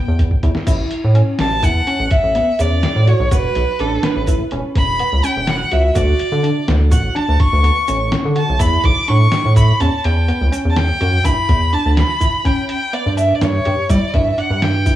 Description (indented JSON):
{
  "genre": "progressive instrumental, band music in an uneven meter",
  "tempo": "250 BPM (eighths)",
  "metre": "11/8",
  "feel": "straight",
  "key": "unclear",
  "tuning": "A4 = 439 Hz",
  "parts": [
    { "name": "rich violin", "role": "melody", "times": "0.0-15.0 s", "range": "A4 to D6", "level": "-19 LUFS", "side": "equal", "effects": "tape echo" },
    { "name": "tight sequenced synth", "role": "arpeggios", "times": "0.0-15.0 s", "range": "C#3 to G4", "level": "-24 LUFS", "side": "right 1 dB", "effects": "chorus" },
    { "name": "rubbery square bass", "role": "bass", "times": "0.1-15.0 s", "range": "E1 to G3", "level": "-15 LUFS", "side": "equal", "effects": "none" },
    { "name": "lo-fi sampler-style drum kit", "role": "drums", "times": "0.2-15.0 s", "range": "crash cymbal, hi-hat, kick drum, snare drum", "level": "-18 LUFS", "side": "equal", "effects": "cassette tape" },
    { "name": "tube shaker", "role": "percussion", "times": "0.7-15.0 s", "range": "none", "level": "-36 LUFS", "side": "right 5 dB", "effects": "none" }
  ],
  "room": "little or no reverb",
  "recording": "home recording on cassette, small room reverb",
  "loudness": "-13 LUFS",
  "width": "side -13 dB against mid",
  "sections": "0.7-11.2 A section; 11.2-15.0 B section",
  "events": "drum fill 0.2-0.7; violin solo 0.7-11.2",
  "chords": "0.0 Em; 0.7 Aadd9; 3.3 Esus2; 6.0 Dmaj7; 8.6 Em; 11.2 G6",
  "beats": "0.19 0.43 | 0.67 0.91 1.15 1.39 1.64 1.88 2.12 2.36 2.60 2.84 3.08 | 3.32 3.56 3.80 4.04 4.28 4.52 4.76 5.00 5.24 5.48 5.72 | 5.96 6.20 6.44 6.68 6.92 7.16 7.40 7.64 7.88 8.12 8.36 | 8.60 8.84 9.09 9.32 9.57 9.81 10.05 10.29 10.53 10.77 11.01 | 11.25 11.49 11.73 11.97 12.21 12.45 12.70 12.94 13.18 13.42 13.66 | 13.90 14.14 14.38 14.62 14.87"
}